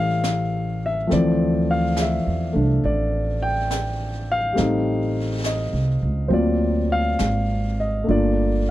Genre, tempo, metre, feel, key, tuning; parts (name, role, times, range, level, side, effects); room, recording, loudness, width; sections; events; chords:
jazz ballad; 69 BPM; 4/4; swing 66% on 8ths; A4 = 440 Hz
dark concert grand piano; accompaniment; 0.0-8.7 s; E3 to G5; -21 LUFS; left 1 dB
upright bass; bass; 0.0-8.7 s; G1 to E2; -23 LUFS; right 1 dB
jazz brush drum kit; drums; 0.2-8.7 s; brushed snare drum, hi-hat, snare drum; -33 LUFS; equal
little or no reverb; -19 LUFS; side -14 dB against mid
0.0-8.7 A section
0.0 A7; 1.1 Dm9; 4.6 Am7b5; 6.3 D7alt; 8.1 Gm9